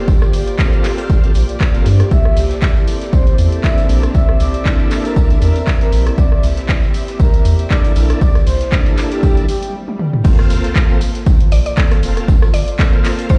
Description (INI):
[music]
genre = deep house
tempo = 118 BPM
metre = 4/4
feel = swing 55% on 16ths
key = G dorian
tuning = A4 = 440 Hz
[part]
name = airy breathy pad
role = sustained chords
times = 0.0-13.4 s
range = Bb3 to D5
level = -31 LUFS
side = equal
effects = chorus, sidechain pumping
[part]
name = bright tonewheel organ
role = stabs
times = 0.0-13.4 s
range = Bb3 to A4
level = -27 LUFS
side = equal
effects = chorus vibrato, slow rotary speaker, vintage 12-bit sampler grit, sidechain pumping, low-pass filter, analog delay
[part]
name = dark chamber string section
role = texture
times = 0.0-9.7 s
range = C4 to E5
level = -28 LUFS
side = equal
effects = sidechain pumping
[part]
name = round analog bass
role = bass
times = 0.1-13.4 s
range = F1 to G2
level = -17 LUFS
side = equal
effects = sidechain pumping
[part]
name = electronic kick drum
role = drums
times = 0.1-13.4 s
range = none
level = -15 LUFS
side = equal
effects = none
[part]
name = oversized low-tuned drum kit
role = drums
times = 0.1-13.4 s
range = hi-hat, snare drum, tambourine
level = -39 LUFS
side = equal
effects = none
[part]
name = punchy analog drum machine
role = drums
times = 0.1-13.4 s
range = crash cymbal, handclaps, hi-hat, rim click, tambourine, toms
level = -26 LUFS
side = equal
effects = none
[part]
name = breathy flute-like synth lead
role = melody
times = 2.1-9.7 s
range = G4 to E5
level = -27 LUFS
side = equal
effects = chorus, analog delay
[part]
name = swell and sub drop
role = sound effects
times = 9.4-12.3 s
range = none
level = -28 LUFS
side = equal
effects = none
[part]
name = mallet-like synth pluck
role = melody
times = 11.5-13.4 s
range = C5 to D5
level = -27 LUFS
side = equal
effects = chorus, analog delay
[sound]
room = little or no reverb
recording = played on a big sound system in a bare room, cassette tape, stone room reverb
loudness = -14 LUFS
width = mono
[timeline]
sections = 0.0-10.2 A section; 10.2-13.4 B section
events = swell 9.4-10.2; stop 9.7-10.2; drum fill 9.9-10.2; drop 10.2-13.4; impact 10.2-12.3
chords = 0.0 Gm11; 2.1 C13; 10.2 Gm11